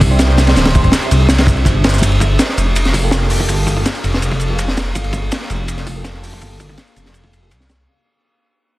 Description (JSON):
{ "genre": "drum and bass, jungle", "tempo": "164 BPM", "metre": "4/4", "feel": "straight", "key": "G dorian", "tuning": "A4 = 440 Hz", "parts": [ { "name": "dark detuned saw bass", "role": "bass", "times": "0.0-7.9 s", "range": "D1 to C2", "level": "-15 LUFS", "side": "equal", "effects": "tube saturation" }, { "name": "crunchy breakbeat drum kit", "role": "drums", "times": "0.0-7.8 s", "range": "hi-hat, kick drum, ride cymbal, snare drum", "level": "-15 LUFS", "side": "equal", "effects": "high-pass filter on kick, high-pass filter on cymbals, high-pass filter on hats, high-pass filter on snare, high-pass filter on room" }, { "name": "dusty soul sampler-style drum kit", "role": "drums", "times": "0.0-7.8 s", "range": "hi-hat, shaker, snare drum", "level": "-27 LUFS", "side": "equal", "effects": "high-pass filter on perc, high-pass filter on snare, high-pass filter on hats" }, { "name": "mellow tonewheel organ", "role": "stabs", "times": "0.1-7.5 s", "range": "Bb3 to C5", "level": "-26 LUFS", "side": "right 2 dB", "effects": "slow rotary speaker, low-pass filter, dub echo" } ], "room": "studio ambience", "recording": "dense, heavily limited modern master, vinyl crackle", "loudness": "-12 LUFS", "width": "side -18 dB against mid", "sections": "0.0-2.0 A section; 2.0-7.9 B section", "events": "drop 0.0-2.0; fade-out 2.0-7.9; filter sweep on tonewheel organ 2.0-7.9", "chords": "0.0 D9sus4; 2.0 Gm9", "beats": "0.20 | 0.56 0.93 1.29 1.66 | 2.03 2.39 2.76 3.12 | 3.49 3.85 4.22 4.59 | 4.95 5.32 5.68 6.05 | 6.42 6.78 7.15 7.51" }